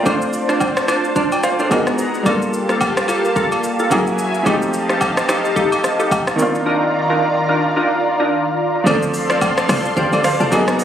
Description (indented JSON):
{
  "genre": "amapiano",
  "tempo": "109 BPM",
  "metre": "4/4",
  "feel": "swing 58% on 16ths",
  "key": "unclear",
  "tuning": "A4 = 442 Hz",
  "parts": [
    { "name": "clear grand piano", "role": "accompaniment", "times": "0.0-10.8 s", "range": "Eb3 to A5", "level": "-20 LUFS", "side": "right 1 dB", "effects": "none" },
    { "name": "lush unison pad", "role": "sustained chords", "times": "0.0-10.8 s", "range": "Eb3 to C6", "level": "-20 LUFS", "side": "equal", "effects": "chorus, phaser, sidechain pumping" },
    { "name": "glassy wavetable pluck", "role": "stabs", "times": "0.1-10.5 s", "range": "Bb3 to D5", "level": "-22 LUFS", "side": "equal", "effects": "chorus, ping-pong delay" },
    { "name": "deep house drum kit", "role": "drums", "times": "0.1-10.8 s", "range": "hi-hat, kick drum, rim click, shaker", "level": "-23 LUFS", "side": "equal", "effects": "none" },
    { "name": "agogo bells and woodblock", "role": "percussion", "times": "0.1-10.7 s", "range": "none", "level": "-24 LUFS", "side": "equal", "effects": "none" },
    { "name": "woody log drum bass", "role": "bass", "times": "8.9-10.5 s", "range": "A1 to D2", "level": "-21 LUFS", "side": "equal", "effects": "none" }
  ],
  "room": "light reverb",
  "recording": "recorded on a phone in the room, studio reverb, compression",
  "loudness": "-15 LUFS",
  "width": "side -9 dB against mid",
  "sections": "0.0-8.9 A section; 8.9-10.8 B section",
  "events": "drop 8.9-10.8",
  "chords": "0.1 Dm7; 1.7 Abm9; 2.3 Gm9; 3.9 F#9; 4.5 F9; 6.4 Cm11/Eb; 8.9 Dm7"
}